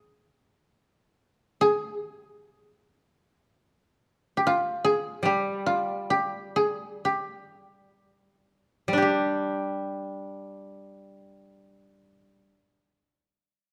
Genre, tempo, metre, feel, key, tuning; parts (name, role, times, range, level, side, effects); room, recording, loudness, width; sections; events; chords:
japanese traditional, Japanese chamber music; 30-47 BPM; 4/4; rubato; A4 = 441 Hz
koto; melody; 0.0-12.6 s; F4 to Ab4; -27 LUFS; equal
koto; accompaniment; 5.2-12.6 s; G3 to G4; -30 LUFS; equal
moderate recital hall reverb, RT60 1.6 s; -27 LUFS; mono
0.0-9.0 A section; 9.0-13.7 B section
slowing down 0.0-9.0